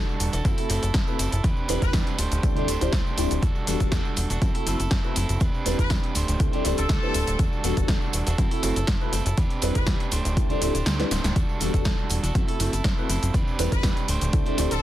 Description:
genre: filtered disco house.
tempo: 121 BPM.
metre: 4/4.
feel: swing 53% on 16ths.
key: unclear.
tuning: A4 = 439 Hz.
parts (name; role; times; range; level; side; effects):
electric guitar at the edge of break-up; riff; 0.0-14.8 s; G3 to C5; -31 LUFS; right 4 dB; vintage 12-bit sampler grit, sidechain pumping.
plucky analog bass; bass; 0.0-14.8 s; D1 to F#2; -27 LUFS; equal; sidechain pumping.
tambourine; percussion; 0.1-14.8 s; none; -42 LUFS; right 9 dB; none.
punchy analog drum machine; drums; 0.2-14.8 s; hi-hat, shaker, snare drum; -30 LUFS; left 1 dB; overdrive, sidechain pumping on hats, sidechain pumping on perc.
dark concert grand piano; accompaniment; 0.4-14.7 s; G3 to C5; -29 LUFS; left 1 dB; phaser, sidechain pumping.
electronic kick drum; drums; 0.5-14.4 s; none; -24 LUFS; equal; overdrive.
brilliant trumpet section; melody; 1.8-1.9, 5.8-9.9, 13.7-14.8 s; A4 to B4; -34 LUFS; equal; sidechain pumping, tape echo.
room: digital ambience.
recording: dense, heavily limited modern master.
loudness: -21 LUFS.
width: side -13 dB against mid.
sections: 0.0-14.8 A section.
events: kick drops out 10.9-11.4; drum fill 11.0-11.4.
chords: 0.5 F#m7b5; 1.4 Cmaj9/E; 2.2 D7sus4; 3.4 Em11; 4.4 F#m7b5; 5.4 Cmaj9/E; 6.2 D7sus4; 7.4 Em11; 8.4 F#m7b5; 9.4 Cmaj9/E; 10.1 D7sus4; 11.4 Em11; 12.4 F#m7b5; 13.3 Cmaj9/E; 14.1 D7sus4.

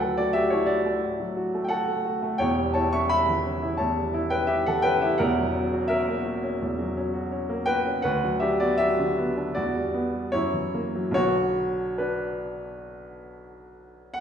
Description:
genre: classical, romantic character piece for solo piano.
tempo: 68-90 BPM.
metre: 4/4.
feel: rubato.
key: B minor.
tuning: A4 = 439 Hz.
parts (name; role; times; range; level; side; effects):
warm baby grand piano; solo; 0.0-14.2 s; E1 to C#6; -23 LUFS; equal; none.
room: wet recital hall reverb, RT60 1.6 s.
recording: recorded in a church or concert hall, nothing above 10.8 kHz.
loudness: -23 LUFS.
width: side -8 dB against mid.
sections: 0.0-14.2 A section.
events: none.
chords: 0.0 D; 2.4 C#dim/E; 5.2 F#7/E; 8.0 Bm/D; 9.6 Em; 10.4 F#7; 11.2 Bm.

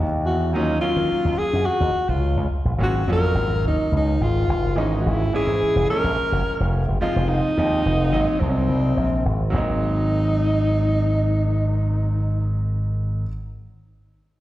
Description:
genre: jazz.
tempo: 107 BPM.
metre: 4/4.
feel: straight.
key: Ab mixolydian.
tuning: A4 = 440 Hz.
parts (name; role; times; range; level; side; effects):
clear grand piano; accompaniment; 0.0-13.3 s; Fb3 to F4; -28 LUFS; right 2 dB; slapback echo.
slap bass with an envelope filter; bass; 0.0-13.2 s; F1 to Eb3; -21 LUFS; equal; none.
mellow alto saxophone; melody; 0.3-12.5 s; C4 to Bb4; -23 LUFS; left 1 dB; slapback echo.
room: light reverb, small room ambience.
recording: live gig heard through the venue's PA, recital hall reverb.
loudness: -19 LUFS.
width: side -15 dB against mid.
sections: 0.0-9.5 A section; 9.5-11.8 B section.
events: none.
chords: 0.0 Emaj7sus2; 0.5 Ebm9; 2.8 Ab13sus4; 4.8 Dbmadd9/Ab; 5.9 Gbmaj9; 7.0 Fm7; 8.1 Ab9.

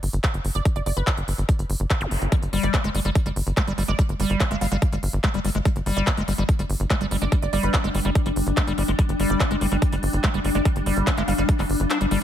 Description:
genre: psychedelic trance.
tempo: 144 BPM.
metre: 4/4.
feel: straight.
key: G major.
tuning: A4 = 441 Hz.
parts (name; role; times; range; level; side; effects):
tight sequencer bass; bass; 0.0-12.2 s; G1; -24 LUFS; equal; none.
drum and bass drum kit; drums; 0.0-12.2 s; handclaps, hi-hat; -29 LUFS; equal; none.
electronic kick drum; drums; 0.2-11.6 s; none; -22 LUFS; equal; none.
resonant blip pluck; second line; 0.6-11.4 s; B4 to F5; -34 LUFS; right 3 dB; phaser, sidechain pumping, high-pass filter, dub echo.
zap; sound effects; 2.0-2.1 s; none; -32 LUFS; equal; none.
liquid acid bass; riff; 2.3-12.2 s; G3 to D4; -27 LUFS; moving between left 7 dB and right 6 dB; chorus, auto-pan, cassette tape, sidechain pumping, digital delay.
swarming drone; sustained chords; 7.1-12.2 s; G3 to D4; -27 LUFS; left 2 dB; built-in reverb, sidechain pumping.
room: digital ambience.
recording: none.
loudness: -20 LUFS.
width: side -10 dB against mid.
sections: 0.0-12.2 A section.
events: kick drops out 11.9-12.2.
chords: 0.0 G5.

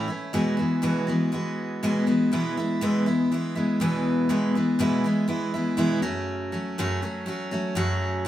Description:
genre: rock.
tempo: 121 BPM.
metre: 4/4.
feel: straight.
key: unclear.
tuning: A4 = 441 Hz.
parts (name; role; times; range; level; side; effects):
picked steel-string acoustic guitar; solo; 0.0-8.3 s; E2 to F#4; -23 LUFS; equal; none.
room: moderate stone room reverb, RT60 1.1 s.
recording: band playing live in one room.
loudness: -22 LUFS.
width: side -12 dB against mid.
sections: 0.0-2.3 A section; 2.3-8.3 B section.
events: none.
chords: 0.3 Eadd9; 2.3 E; 6.0 F#m.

